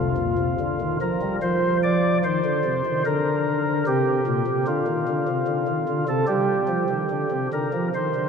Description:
classical, chorale-style piece for pipe organ; 74 BPM; 4/4; rubato; Bb major; A4 = 440 Hz
pipe organ, flutes; solo; 0.0-8.3 s; Bb2 to D5; -20 LUFS; equal
wet cathedral reverb, RT60 5.5 s; minimal, uncompressed stereo recording; -20 LUFS; side -6 dB against mid
0.0-8.3 A section
0.0 Bb; 1.4 F5; 3.0 Bb/D; 4.7 Dm; 6.3 G5
0.58 1.41 2.23 | 3.05 3.86 4.66 5.47 | 6.28 7.09 7.93

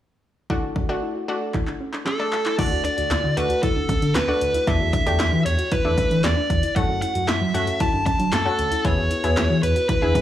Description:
synth-pop; 115 BPM; 4/4; straight; D major; A4 = 439 Hz
analog pluck; accompaniment; 0.5-10.2 s; A3 to A4; -28 LUFS; left 2 dB; chorus
soft round pluck; arpeggios; 0.5-10.2 s; C#4 to F#4; -30 LUFS; left 1 dB; chorus, slapback echo
punchy analog drum machine; drums; 0.5-10.2 s; crash cymbal, handclaps, hi-hat, kick drum, snare drum; -25 LUFS; equal; overdrive
dark smooth lead guitar; melody; 2.1-10.2 s; A4 to A5; -23 LUFS; equal; overdrive, slapback echo
round analog bass; bass; 2.6-10.1 s; D2 to F#3; -23 LUFS; equal
light reverb; studio reverb; -19 LUFS; side -12 dB against mid
0.5-2.6 A section; 2.6-10.2 B section
drum fill 1.5-2.6
0.5 Dadd9; 4.7 Asus4/E; 6.8 F#m7; 8.8 E
| 0.50 1.02 1.54 2.06 | 2.59 3.11 3.63 4.15 | 4.67 5.20 5.72 6.24 | 6.76 7.28 7.80 8.33 | 8.85 9.37 9.89

